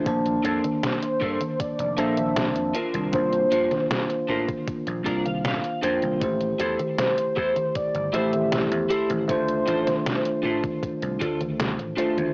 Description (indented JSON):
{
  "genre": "vaporwave",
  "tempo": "78 BPM",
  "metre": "4/4",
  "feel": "straight",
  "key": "D minor",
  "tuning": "A4 = 440 Hz",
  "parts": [
    { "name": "bell-like tine electric piano", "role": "accompaniment", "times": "0.0-12.3 s", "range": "A3 to A5", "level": "-26 LUFS", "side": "equal", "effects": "lush chorus, tape echo, plate reverb" },
    { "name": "vintage slap bass", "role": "bass", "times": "0.0-12.3 s", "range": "F1 to A2", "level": "-30 LUFS", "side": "equal", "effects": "none" },
    { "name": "detuned 8-bit digital drum machine", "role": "drums", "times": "0.1-12.3 s", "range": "congas, hi-hat, snare drum", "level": "-30 LUFS", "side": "equal", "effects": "vintage 12-bit sampler grit, cassette tape" },
    { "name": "electronic kick drum", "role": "drums", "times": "0.1-11.4 s", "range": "none", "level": "-32 LUFS", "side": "equal", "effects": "vintage 12-bit sampler grit, cassette tape" },
    { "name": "electric guitar at the edge of break-up", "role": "riff", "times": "0.4-12.2 s", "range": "D4 to G5", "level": "-28 LUFS", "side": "equal", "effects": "analog chorus, tape echo" },
    { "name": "warm velvety synth lead", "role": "melody", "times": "0.8-10.4 s", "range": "C5 to E5", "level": "-27 LUFS", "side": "equal", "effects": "chorus, cassette tape, tape echo" }
  ],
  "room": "moderate studio reverb, RT60 0.6 s",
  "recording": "home recording on cassette, small speaker sound",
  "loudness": "-22 LUFS",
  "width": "side -31 dB against mid",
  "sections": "0.0-12.3 A section",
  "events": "clean electric guitar fill 4.7-6.2",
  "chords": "0.1 Bbmaj9; 2.8 C9sus4; 6.2 Am7; 9.3 Dm7"
}